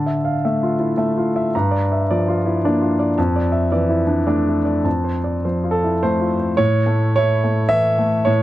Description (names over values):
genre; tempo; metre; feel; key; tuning
neoclassical minimalist piano; 108 BPM; 3/4; rubato; D minor; A4 = 440 Hz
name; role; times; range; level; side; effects
clear grand piano; solo; 0.0-8.4 s; F2 to Bb5; -16 LUFS; equal; none
room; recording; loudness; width
moderate booth ambience, RT60 0.2 s; none; -16 LUFS; side -15 dB against mid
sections
0.0-6.6 A section; 6.6-8.4 B section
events
none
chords
0.0 Dmadd9; 1.5 Gm7; 3.2 Dmadd9/F; 4.9 F; 6.6 A